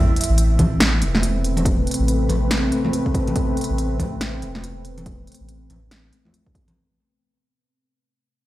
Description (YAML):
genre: deep dubstep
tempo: 141 BPM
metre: 4/4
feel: swing 60% on 16ths, half-time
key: A minor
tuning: A4 = 440 Hz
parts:
  - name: deep dark ambient pad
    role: sustained chords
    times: 0.0-6.7 s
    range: A3 to B4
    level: -24 LUFS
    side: equal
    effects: chorus, built-in reverb
  - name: deep house drum kit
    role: drums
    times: 0.2-6.7 s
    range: hi-hat, snare drum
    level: -23 LUFS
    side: equal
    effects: none
  - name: soft dub sub bass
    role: bass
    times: 0.3-6.1 s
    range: E1 to A1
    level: -21 LUFS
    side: equal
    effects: none
  - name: electronic kick drum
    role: drums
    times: 0.6-6.7 s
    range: none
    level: -21 LUFS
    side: equal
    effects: none
  - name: congas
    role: percussion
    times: 0.6-6.7 s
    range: none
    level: -26 LUFS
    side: right 1 dB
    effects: dub echo
room: light reverb, digital ambience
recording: played on a big sound system in a bare room, large studio reverb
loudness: -17 LUFS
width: side -16 dB against mid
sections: 0.0-6.8 A section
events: fade-out 0.0-6.8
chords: 0.0 Amadd9